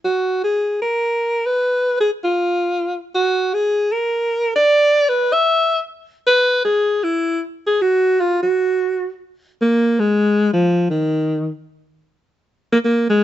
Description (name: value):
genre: jazz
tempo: 154 BPM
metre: 4/4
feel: swing 64% on 8ths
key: unclear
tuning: A4 = 441 Hz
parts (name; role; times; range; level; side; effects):
- clear alto saxophone; solo; 0.0-13.2 s; Eb3 to Fb5; -15 LUFS; equal; none
room: light reverb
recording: dark, warm production, nothing above 7.9 kHz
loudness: -16 LUFS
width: side -12 dB against mid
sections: 0.0-9.4 A section; 9.4-13.2 B section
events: none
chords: none